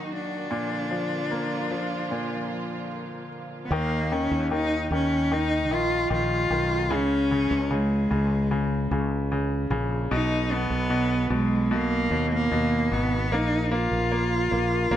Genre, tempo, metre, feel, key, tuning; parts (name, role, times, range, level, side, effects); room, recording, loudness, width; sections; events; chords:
pop; 75 BPM; 4/4; straight; A4 = 441 Hz
rich cello; melody; 0.0-15.0 s; Ab3 to F4; -26 LUFS; equal
bright grand piano; accompaniment; 0.0-15.0 s; Eb2 to Bb3; -29 LUFS; left 1 dB
warm studio string section; sustained chords; 0.0-3.7 s; D3 to Gb4; -34 LUFS; right 2 dB
fretless electric bass; bass; 3.7-15.0 s; Ab1 to Eb2; -28 LUFS; right 1 dB
light reverb, small room ambience; -23 LUFS; side -11 dB against mid
0.0-3.7 A section; 3.7-15.0 B section
0.0 Ebm; 0.5 Bb; 3.7 Ebsus2; 6.9 Db5; 10.1 Abm/Cb (rootless); 13.3 Bbsus4